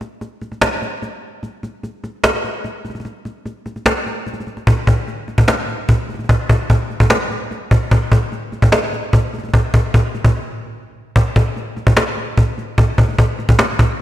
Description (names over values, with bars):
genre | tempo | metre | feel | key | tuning
hip hop | 148 BPM | 4/4 | half-time | none | none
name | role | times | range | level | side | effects
cajon | drums | 0.0-14.0 s | none | -14 LUFS | equal | none
room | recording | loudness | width
moderate lush hall reverb, RT60 1.8 s, small room ambience | dreamy mix soaked in reverb | -14 LUFS | side -13 dB against mid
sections
0.0-11.2 A section; 11.2-14.0 B section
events
break 0.0-4.7, 10.3-11.2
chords
none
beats
0.21 0.62 1.02 | 1.43 1.83 2.24 2.64 | 3.05 3.46 3.86 4.26 | 4.67 5.08 5.48 5.89 | 6.29 6.70 7.10 7.51 | 7.91 8.32 8.72 9.13 | 9.54 9.94 10.35 10.75 | 11.16 11.56 11.97 12.37 | 12.78 13.18 13.59 13.99